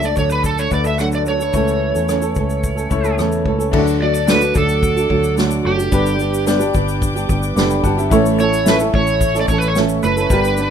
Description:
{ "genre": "acoustic pop", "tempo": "110 BPM", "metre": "4/4", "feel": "straight", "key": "D major", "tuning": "A4 = 440 Hz", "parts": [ { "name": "overdriven slide guitar", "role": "melody", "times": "0.0-10.7 s", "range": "G4 to F#5", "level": "-19 LUFS", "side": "right 2 dB", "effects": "none" }, { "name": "bright upright piano", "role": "accompaniment", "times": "0.0-10.7 s", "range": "A3 to D6", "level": "-23 LUFS", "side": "left 8 dB", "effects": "none" }, { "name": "flamenco guitar", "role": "accompaniment", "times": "0.0-10.7 s", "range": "G2 to A4", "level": "-20 LUFS", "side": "right 5 dB", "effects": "none" }, { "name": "vintage muted fingered electric bass", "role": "bass", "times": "0.0-10.7 s", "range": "F#1 to E2", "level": "-21 LUFS", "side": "left 1 dB", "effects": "none" }, { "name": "unplugged drum kit", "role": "drums", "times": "0.0-10.7 s", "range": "crash cymbal, kick drum, rim click, shaker, snare drum", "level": "-21 LUFS", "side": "left 1 dB", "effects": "none" }, { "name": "warm studio string section", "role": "sustained chords", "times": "3.7-10.7 s", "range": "A4 to D6", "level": "-29 LUFS", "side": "left 2 dB", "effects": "none" } ], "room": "light reverb", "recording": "minimal, uncompressed stereo recording", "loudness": "-14 LUFS", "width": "side -8 dB against mid", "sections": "0.0-3.7 A section; 3.7-10.7 B section", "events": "none", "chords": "0.0 D; 1.5 A/C#; 3.7 D; 5.9 G; 8.1 A", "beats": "0.44 0.99 | 1.54 2.09 2.64 3.19 | 3.73 4.28 4.83 5.38 | 5.92 6.47 7.02 7.57 | 8.11 8.66 9.21 9.75 | 10.30" }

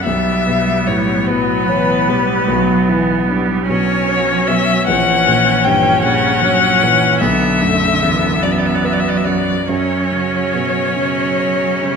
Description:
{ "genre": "classical, slow romantic movement for piano quartet", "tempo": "46-52 BPM (dotted quarters)", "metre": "12/8", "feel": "rubato", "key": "unclear", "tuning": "A4 = 440 Hz", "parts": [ { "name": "rich violin", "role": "melody", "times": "0.0-12.0 s", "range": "B4 to G5", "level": "-17 LUFS", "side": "left 7 dB", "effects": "none" }, { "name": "clear cello", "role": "second line", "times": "0.0-12.0 s", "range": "C#3 to G3", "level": "-20 LUFS", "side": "right 6 dB", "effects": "none" }, { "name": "dark concert grand piano", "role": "accompaniment", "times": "0.0-12.0 s", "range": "A#1 to C#5", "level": "-18 LUFS", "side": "left 2 dB", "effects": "none" }, { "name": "rich viola", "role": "accompaniment", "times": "0.0-12.0 s", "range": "A3 to C#4", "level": "-20 LUFS", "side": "right 5 dB", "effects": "none" } ], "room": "moderate recital hall reverb, RT60 1.4 s", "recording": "none", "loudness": "-12 LUFS", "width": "side -6 dB against mid", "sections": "0.0-12.0 A section", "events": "none", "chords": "0.1 C#m7b5/B; 4.9 F#7/A#; 7.2 Bm; 9.7 F#sus4", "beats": "| 0.07 1.28 2.49 3.69 | 4.88 6.04 7.22 8.43 | 9.70 10.98" }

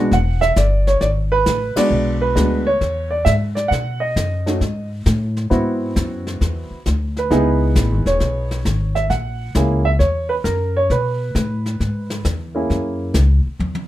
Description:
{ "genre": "jazz piano trio", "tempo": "134 BPM", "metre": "4/4", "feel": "swing 68% on 8ths", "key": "unclear", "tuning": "A4 = 439 Hz", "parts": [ { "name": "warm baby grand piano", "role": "melody", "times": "0.0-13.1 s", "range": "G#3 to F#5", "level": "-19 LUFS", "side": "right 2 dB", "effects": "none" }, { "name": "upright bass", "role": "bass", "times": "0.0-13.9 s", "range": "E1 to B2", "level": "-19 LUFS", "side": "left 1 dB", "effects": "none" }, { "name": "jazz brush drum kit", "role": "drums", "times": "0.1-13.9 s", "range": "brushed snare drum, hi-hat, kick drum, ride cymbal, snare drum, toms", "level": "-27 LUFS", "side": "left 2 dB", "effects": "none" } ], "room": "light reverb", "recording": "minimal, uncompressed stereo recording", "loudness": "-16 LUFS", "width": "side -14 dB against mid", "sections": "0.0-13.9 A section", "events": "band accent 1.7; drum fill 13.6", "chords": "0.1 E7; 3.7 B7; 5.5 G#7alt; 7.3 C#m7; 9.1 F#7; 10.9 Asus2; 11.8 E; 12.7 F#7", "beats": "| 0.12 0.56 1.01 1.46 | 1.91 2.36 2.81 3.26 | 3.71 4.16 4.61 5.06 | 5.51 5.96 6.41 6.85 | 7.30 7.75 8.20 8.65 | 9.10 9.55 10.00 10.45 | 10.90 11.35 11.79 12.24 | 12.69 13.14 13.59" }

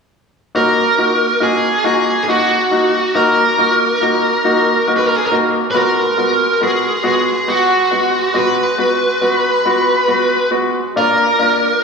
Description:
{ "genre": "six-eight pop ballad", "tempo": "46 BPM (dotted quarters)", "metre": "6/8", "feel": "straight", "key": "Eb harmonic minor", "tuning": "A4 = 440 Hz", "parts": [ { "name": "bright concert grand piano", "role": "accompaniment", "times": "0.5-11.7 s", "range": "Ab3 to Gb4", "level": "-16 LUFS", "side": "left 1 dB", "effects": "none" }, { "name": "high-gain lead guitar", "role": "melody", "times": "0.6-11.8 s", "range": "Gb4 to Cb5", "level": "-14 LUFS", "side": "right 1 dB", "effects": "distortion" } ], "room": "wet scoring stage reverb, RT60 1.9 s", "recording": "recorded in a church or concert hall", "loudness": "-12 LUFS", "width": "side -5 dB against mid", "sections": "0.6-11.8 A section", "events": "none", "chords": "0.6 Ebm; 5.8 Abm7; 11.0 Bb", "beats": "| 0.55 1.86 | 3.17 4.46 | 5.76 7.05 | 8.36 9.66 | 10.97" }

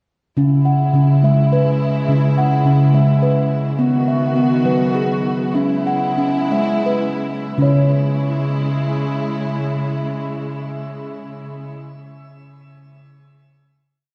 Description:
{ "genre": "world meditative, meditative tuned percussion", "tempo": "53-70 BPM (dotted quarters)", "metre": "6/8", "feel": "straight", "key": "C# minor pentatonic", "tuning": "A4 = 443 Hz", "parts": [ { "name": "dark studio string section", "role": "sustained chords", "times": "0.4-11.8 s", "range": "C#3 to F#4", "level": "-26 LUFS", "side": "equal", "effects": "shimmer reverb" }, { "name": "steel tongue drum", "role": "arpeggios", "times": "0.4-11.9 s", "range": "C#3 to F#5", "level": "-18 LUFS", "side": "equal", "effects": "shimmer reverb" } ], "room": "wet echo chamber reverb, RT60 2.4 s", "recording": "cassette tape", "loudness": "-17 LUFS", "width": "mono", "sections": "0.4-7.6 A section; 7.6-12.1 final chord", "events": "slowing down 3.8-7.6", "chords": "0.4 C#m; 3.8 B; 5.6 C#m", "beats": "| 0.38 1.23 | 2.08 2.94 | 3.79 4.65 | 5.55 6.52 | 7.58 8.71 | 9.84 10.97" }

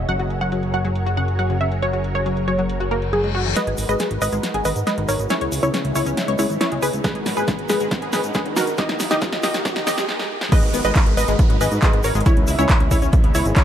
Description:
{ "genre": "uplifting trance", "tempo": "138 BPM", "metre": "4/4", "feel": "straight", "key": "G# minor", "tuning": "A4 = 440 Hz", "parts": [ { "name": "analog string pad", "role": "sustained chords", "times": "0.0-13.6 s", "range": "C#3 to C#5", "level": "-29 LUFS", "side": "equal", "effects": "ensemble chorus, sidechain pumping" }, { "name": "fat analog bass", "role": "bass", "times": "0.0-13.5 s", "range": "D#1 to G#2", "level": "-24 LUFS", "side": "equal", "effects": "sidechain pumping" }, { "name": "wide unison pluck", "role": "melody", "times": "0.1-13.6 s", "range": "E4 to F#5", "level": "-23 LUFS", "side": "right 1 dB", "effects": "sidechain pumping, tape echo" }, { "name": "analog pluck", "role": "arpeggios", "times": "0.1-13.6 s", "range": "C#3 to C#5", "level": "-27 LUFS", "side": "left 3 dB", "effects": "analog chorus, sidechain pumping, tape echo" }, { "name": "big-room dance drum kit", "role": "drums", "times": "0.1-13.6 s", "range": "crash cymbal, handclaps, hi-hat, snare drum", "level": "-26 LUFS", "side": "equal", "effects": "low-pass filter on hats, studio reverb, low-pass filter on snare, low-pass filter on cymbals" }, { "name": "reverse cymbal, riser, swell and downlifter", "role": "sound effects", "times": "2.9-13.6 s", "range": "none", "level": "-32 LUFS", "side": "equal", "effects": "none" }, { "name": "egg shaker", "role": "percussion", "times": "3.6-13.6 s", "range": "none", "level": "-34 LUFS", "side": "left 2 dB", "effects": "none" }, { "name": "electronic kick drum", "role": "drums", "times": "7.0-13.6 s", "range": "none", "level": "-17 LUFS", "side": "equal", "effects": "studio reverb" } ], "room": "light reverb", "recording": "high-pass filter", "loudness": "-17 LUFS", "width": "side -10 dB against mid", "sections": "0.0-3.6 A section; 3.6-10.5 B section; 10.5-13.6 C section", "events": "reverse cymbal 2.9-3.6; build-up 3.6-10.5; drum fill 3.6-10.1, 10.1-10.5; riser 3.6-10.1; filter sweep 3.6-10.5; swell 9.7-10.5; break 10.1-10.5; drop 10.5-13.6", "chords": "0.1 F#add9; 3.6 G#m7; 5.3 C#m7; 7.0 G#m7; 8.8 D#; 10.5 G#m7; 12.3 C#m7", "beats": "| 0.09 0.52 0.96 1.39 | 1.82 2.26 2.69 3.13 | 3.56 4.00 4.43 4.87 | 5.30 5.74 6.17 6.61 | 7.04 7.48 7.91 8.35 | 8.78 9.22 9.65 10.09 | 10.52 10.96 11.39 11.82 | 12.26 12.70 13.13 13.56" }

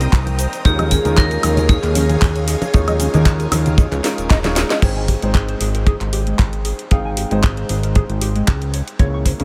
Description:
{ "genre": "nu-disco, nu disco", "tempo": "115 BPM", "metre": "4/4", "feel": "swing 54% on 16ths", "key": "Ab major", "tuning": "A4 = 440 Hz", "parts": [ { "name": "warm concert grand piano", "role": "accompaniment", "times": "0.0-9.4 s", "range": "G3 to G5", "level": "-27 LUFS", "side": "equal", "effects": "delay" }, { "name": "string machine, full ensemble", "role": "sustained chords", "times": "0.0-4.8 s", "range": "C5 to Eb6", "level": "-34 LUFS", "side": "equal", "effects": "phaser, ensemble chorus, sidechain pumping" }, { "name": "mellow electric guitar", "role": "riff", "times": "0.0-9.4 s", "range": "Eb3 to Db6", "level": "-29 LUFS", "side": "equal", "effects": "lush chorus, delay" }, { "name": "fat analog bass", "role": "bass", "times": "0.0-9.4 s", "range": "Eb1 to Eb2", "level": "-22 LUFS", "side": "equal", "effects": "tube saturation" }, { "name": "house drum kit", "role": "drums", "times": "0.0-9.4 s", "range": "crash cymbal, handclaps, hi-hat, shaker, snare drum, woodblock", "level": "-27 LUFS", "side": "equal", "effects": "none" }, { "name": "kick drum", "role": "drums", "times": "0.1-9.4 s", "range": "none", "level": "-16 LUFS", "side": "equal", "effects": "none" }, { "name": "congas", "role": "percussion", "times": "0.3-4.5 s", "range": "none", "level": "-28 LUFS", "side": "equal", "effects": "none" }, { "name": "vibraphone with hard mallets", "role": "melody", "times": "0.7-4.3 s", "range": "G4 to Bb4", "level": "-26 LUFS", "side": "equal", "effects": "analog delay" } ], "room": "light reverb, small room ambience", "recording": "none", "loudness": "-17 LUFS", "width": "mono", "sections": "0.0-4.8 A section; 4.8-9.4 B section", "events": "drop 0.0-4.8; drum fill 4.0-4.8", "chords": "0.0 Cm7; 0.7 Eb9sus4; 4.8 Abmaj7; 8.7 Dbm6", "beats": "0.13 | 0.65 1.17 1.69 2.22 | 2.74 3.26 3.78 4.30 | 4.83 5.35 5.87 6.39 | 6.91 7.43 7.96 8.48 | 9.00" }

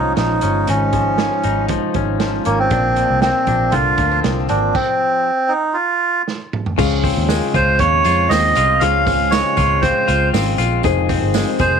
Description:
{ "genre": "jangly indie pop", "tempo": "118 BPM", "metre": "4/4", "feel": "straight", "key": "unclear", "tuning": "A4 = 440 Hz", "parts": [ { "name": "melodica", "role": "melody", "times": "0.0-11.8 s", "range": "Bb3 to F5", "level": "-16 LUFS", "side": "right 2 dB", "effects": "slapback echo" }, { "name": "electric guitar through a small old amp", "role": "accompaniment", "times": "0.0-11.8 s", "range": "F2 to F4", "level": "-25 LUFS", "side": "right 11 dB", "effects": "none" }, { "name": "direct-recorded clean electric guitar", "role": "arpeggios", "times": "0.0-11.8 s", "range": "F2 to Ab4", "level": "-22 LUFS", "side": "left 14 dB", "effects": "slapback echo" }, { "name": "vintage muted picked electric bass", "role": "bass", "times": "0.0-11.8 s", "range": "F1 to F2", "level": "-20 LUFS", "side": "left 1 dB", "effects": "none" }, { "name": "vintage drum kit", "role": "drums", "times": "0.2-11.7 s", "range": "crash cymbal, hi-hat, kick drum, snare drum, toms", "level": "-23 LUFS", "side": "right 4 dB", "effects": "none" }, { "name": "dark upright piano", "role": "accompaniment", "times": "6.8-11.8 s", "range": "Db4 to C5", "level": "-26 LUFS", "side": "left 13 dB", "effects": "none" }, { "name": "tambourine", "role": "percussion", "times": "6.8-11.7 s", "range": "none", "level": "-35 LUFS", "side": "right 15 dB", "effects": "none" } ], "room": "moderate spring reverb, RT60 1.0 s", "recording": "1960s-style stereo with parts hard left and right", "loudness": "-14 LUFS", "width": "side -7 dB against mid", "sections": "0.0-6.8 A section; 6.8-11.8 B section", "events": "stop 4.7-6.8; drum fill 6.3-6.8", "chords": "0.0 Dbadd9; 2.7 Bbadd9; 6.8 Dbmaj7; 10.8 Fm7", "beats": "0.17 | 0.68 1.19 1.69 2.20 | 2.71 3.22 3.73 4.24 | 4.75 5.26 5.77 6.28 | 6.78 7.29 7.80 8.31 | 8.81 9.32 9.83 10.33 | 10.84 11.34" }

